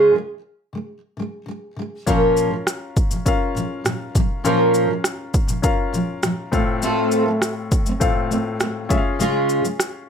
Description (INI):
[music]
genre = acoustic pop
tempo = 101 BPM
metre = 4/4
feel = straight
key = Bb minor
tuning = A4 = 440 Hz
[part]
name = fingerpicked steel-string acoustic guitar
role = accompaniment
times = 0.0-9.9 s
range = Bb2 to Bb4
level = -19 LUFS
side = right 1 dB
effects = double-tracked left and right
[part]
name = clear baby grand piano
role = accompaniment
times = 2.1-10.1 s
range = A2 to F5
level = -25 LUFS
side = left 5 dB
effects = none
[part]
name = punchy analog drum machine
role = drums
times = 2.1-9.9 s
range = kick drum, rim click, shaker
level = -21 LUFS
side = equal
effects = none
[sound]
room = moderate studio reverb, RT60 0.6 s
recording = none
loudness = -18 LUFS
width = side -7 dB against mid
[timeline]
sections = 0.0-10.1 A section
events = none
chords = 0.0 Db5; 2.1 Bbm; 6.5 F/A; 8.9 Db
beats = 0.29 0.88 1.48 | 2.07 2.67 3.26 3.85 | 4.45 5.04 5.64 6.23 | 6.83 7.42 8.02 8.61 | 9.20 9.80